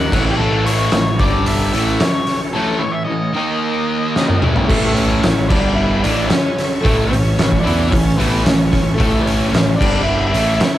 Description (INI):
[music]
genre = quiet-loud alternative rock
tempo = 112 BPM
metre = 4/4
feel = straight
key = A mixolydian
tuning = A4 = 439 Hz
[part]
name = octave-fuzz lead guitar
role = melody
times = 0.0-10.8 s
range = A3 to F#5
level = -22 LUFS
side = left 2 dB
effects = distortion, cassette tape, plate reverb
[part]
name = bright tonewheel organ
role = sustained chords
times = 0.0-10.8 s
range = D3 to D6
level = -28 LUFS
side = right 1 dB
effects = none
[part]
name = distorted electric guitar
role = riff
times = 0.0-10.6 s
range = G2 to E4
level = -24 LUFS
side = left 5 dB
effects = distortion
[part]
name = fuzz guitar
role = riff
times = 0.0-10.6 s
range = G2 to E4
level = -23 LUFS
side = right 5 dB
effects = distortion
[part]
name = fuzz guitar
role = riff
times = 0.0-10.6 s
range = G2 to E4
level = -21 LUFS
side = equal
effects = distortion
[part]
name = growling picked electric bass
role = bass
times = 0.0-10.6 s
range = G1 to E2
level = -21 LUFS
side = equal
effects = overdrive
[part]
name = oversized low-tuned drum kit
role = drums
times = 0.1-10.7 s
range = crash cymbal, hi-hat, kick drum, snare drum, toms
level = -17 LUFS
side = equal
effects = cassette tape
[sound]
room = moderate studio reverb, RT60 0.5 s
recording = home recording on cassette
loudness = -13 LUFS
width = side -13 dB against mid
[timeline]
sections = 0.0-4.7 A section; 4.7-10.8 A section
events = drum fill 4.2-4.7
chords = 0.1 A; 1.2 G5; 1.7 A; 3.3 D#5; 4.4 A; 5.5 G5; 6.0 A; 9.8 G5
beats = | 0.39 0.93 1.47 2.00 | 2.54 3.08 3.62 4.16 | 4.70 5.23 5.77 6.31 | 6.84 7.38 7.92 8.46 | 8.99 9.53 10.06 10.60